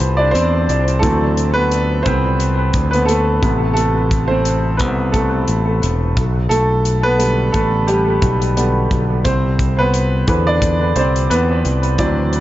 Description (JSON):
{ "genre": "piano-driven pop", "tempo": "88 BPM", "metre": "4/4", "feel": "swing 56% on 16ths", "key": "unclear", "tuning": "A4 = 441 Hz", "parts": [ { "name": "bright upright piano", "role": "accompaniment", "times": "0.0-12.4 s", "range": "C3 to D5", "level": "-17 LUFS", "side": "right 1 dB", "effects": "dub echo" }, { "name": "modern bright picked electric bass", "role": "bass", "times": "0.0-12.4 s", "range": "E1 to E2", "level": "-17 LUFS", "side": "equal", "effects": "none" }, { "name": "modern studio drum kit", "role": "drums", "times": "0.0-12.4 s", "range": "hi-hat, kick drum", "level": "-22 LUFS", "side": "equal", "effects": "none" } ], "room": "light reverb", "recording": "echo-heavy mix, nothing above 7.5 kHz", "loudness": "-14 LUFS", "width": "side -14 dB against mid", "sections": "0.0-12.4 A section", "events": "upright piano solo 0.0-12.4", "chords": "0.0 Cmaj7; 1.0 D7; 3.4 Amadd9; 6.2 G; 9.3 Cmaj7" }